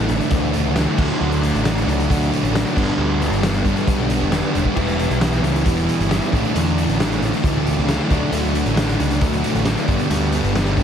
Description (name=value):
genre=quiet-loud alternative rock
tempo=135 BPM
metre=4/4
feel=straight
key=unclear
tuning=A4 = 441 Hz
part: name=phased string machine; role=sustained chords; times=0.0-10.8 s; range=D4 to A5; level=-33 LUFS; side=equal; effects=none
part: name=sludgy distorted guitar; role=riff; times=0.0-10.8 s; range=G2 to E4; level=-22 LUFS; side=left 11 dB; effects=overdrive
part: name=sludgy distorted guitar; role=riff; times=0.0-10.8 s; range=G2 to E4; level=-22 LUFS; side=right 11 dB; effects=overdrive
part: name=growling picked electric bass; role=bass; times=0.0-10.8 s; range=E1 to E2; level=-22 LUFS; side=equal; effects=overdrive
part: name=raw garage drum kit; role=drums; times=0.1-10.8 s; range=crash cymbal, hi-hat, kick drum, snare drum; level=-23 LUFS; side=equal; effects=none
room=studio ambience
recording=heavily compressed radio sound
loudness=-16 LUFS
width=side -8 dB against mid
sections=0.0-10.8 A section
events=none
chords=0.0 Asus4; 1.0 Dadd9; 2.8 Gadd9; 4.8 Em; 6.3 Asus4; 8.1 Dadd9; 9.9 Gadd9